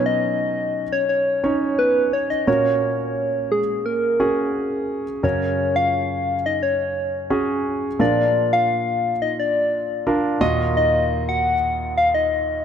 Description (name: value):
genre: pop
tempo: 87 BPM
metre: 4/4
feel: straight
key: unclear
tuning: A4 = 440 Hz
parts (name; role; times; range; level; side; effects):
- soft struck synth lead; melody; 0.0-12.6 s; Ab4 to Gb5; -20 LUFS; left 1 dB; chorus
- warm concert grand piano; accompaniment; 0.0-12.6 s; Eb2 to Eb5; -23 LUFS; right 1 dB; none
room: moderate lush hall reverb, RT60 2.1 s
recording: none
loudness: -18 LUFS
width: side -8 dB against mid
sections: 0.0-5.2 A section; 5.2-12.6 B section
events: none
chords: 0.0 Badd9; 2.5 Gb/Bb; 5.2 Gb; 8.0 Bb; 10.4 Ebmadd9